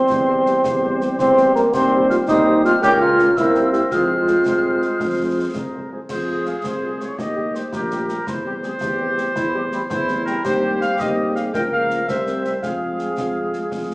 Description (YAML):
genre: military-style march for wind band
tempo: 110 BPM (dotted quarters)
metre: 6/8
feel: straight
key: F minor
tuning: A4 = 441 Hz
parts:
  - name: mellow hollow piccolo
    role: second line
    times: 0.0-5.5 s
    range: Bb5 to G6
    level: -22 LUFS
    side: left 1 dB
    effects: none
  - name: mellow woodwind section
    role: second line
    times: 0.0-13.9 s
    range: E4 to Db5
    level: -26 LUFS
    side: equal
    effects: none
  - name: warm euphonium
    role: second line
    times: 0.0-5.5 s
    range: Bb3 to G4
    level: -17 LUFS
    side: equal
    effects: none
  - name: mellow trombone section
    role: sustained chords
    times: 0.0-5.9 s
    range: G3 to Db4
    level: -26 LUFS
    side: right 1 dB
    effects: none
  - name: warm tuba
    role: bass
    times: 0.1-13.9 s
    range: Bb1 to F2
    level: -25 LUFS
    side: equal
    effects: none
  - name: concert snare drum, concert bass drum and clash cymbals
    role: drums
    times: 0.1-13.9 s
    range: none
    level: -31 LUFS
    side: equal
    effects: none
  - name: mellow trumpet section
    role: melody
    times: 0.3-13.9 s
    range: Ab4 to G5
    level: -26 LUFS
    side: equal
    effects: none
  - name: dark French horn section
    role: accompaniment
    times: 0.3-13.9 s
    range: F3 to Bb4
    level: -28 LUFS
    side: left 1 dB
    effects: none
room: wet large studio reverb, RT60 1.3 s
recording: heard from further back in the room, small speaker sound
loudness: -17 LUFS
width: side -23 dB against mid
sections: 0.0-6.1 A section; 6.1-13.9 A section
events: none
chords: 0.0 C/E; 1.7 Cm/Eb; 2.8 Bbm/Db; 3.4 C7; 3.9 Fm; 7.2 Eb; 8.3 C/E; 10.4 Cm/Eb; 11.5 Bbm/Db; 12.1 C7; 12.6 Fm